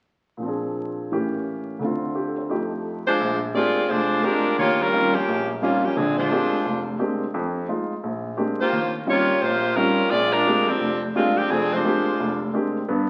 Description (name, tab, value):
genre	jazz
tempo	174 BPM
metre	4/4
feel	swing 63% on 8ths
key	Bb major, Bb mixolydian from 3.2 s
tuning	A4 = 441 Hz
part	warm baby grand piano	accompaniment	0.4-13.1 s	F1 to C5	-27 LUFS	equal	none
part	warm saxophone section	melody	3.1-12.4 s	F3 to D5	-23 LUFS	equal	none
room	wet large studio reverb, RT60 1.4 s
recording	very old 78 rpm record, vinyl crackle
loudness	-23 LUFS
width	mono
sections	0.4-3.2 A section; 3.2-13.1 B section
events	none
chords	0.4 Bb9; 1.1 A7b9; 1.8 Dm7; 2.5 F7; 3.2 Bb13; 4.6 Eb13; 6.0 Bb13; 7.3 Fm7; 8.0 Bb13; 8.7 Eb13; 10.1 Bb13